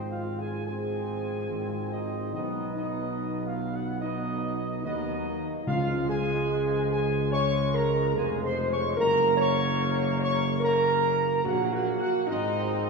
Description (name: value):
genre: classical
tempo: 72 BPM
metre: 4/4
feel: straight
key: Db major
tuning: A4 = 440 Hz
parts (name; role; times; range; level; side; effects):
- mellow trumpet section; melody; 0.0-12.9 s; Eb5 to Db6; -32 LUFS; right 2 dB; none
- bright trombone section; sustained chords; 0.0-12.9 s; F3 to C4; -34 LUFS; right 2 dB; none
- mellow tuba; bass; 0.0-12.9 s; F1 to Eb2; -30 LUFS; right 2 dB; none
- mellow French horn section; sustained chords; 0.1-12.9 s; Eb4 to Db5; -29 LUFS; left 1 dB; none
- timpani; percussion; 5.7-6.9 s; Db3; -33 LUFS; left 1 dB; none
room: wet scoring stage reverb, RT60 1.9 s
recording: heard from further back in the room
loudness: -25 LUFS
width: side -3 dB against mid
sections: 0.0-12.9 A section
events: none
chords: 0.0 Ab6; 2.3 Cb; 5.7 Db; 9.0 Gb; 12.3 Ab6